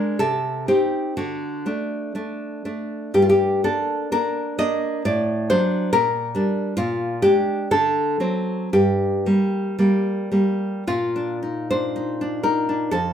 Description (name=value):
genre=romantic piece for solo classical guitar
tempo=53-72 BPM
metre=2/4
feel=rubato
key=G minor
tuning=A4 = 441 Hz
part: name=nylon-string guitar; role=solo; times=0.0-13.1 s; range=F2 to Eb5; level=-19 LUFS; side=equal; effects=none
room=moderate studio reverb, RT60 0.8 s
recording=band playing live in one room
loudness=-19 LUFS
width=side -9 dB against mid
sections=0.0-10.9 A section; 10.9-13.1 B section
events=none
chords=0.2 Cm; 1.2 D; 3.1 Gm; 5.1 D7/A; 5.9 Gm/Bb; 6.8 Bb7; 7.7 D7; 8.7 Gm; 10.9 Bb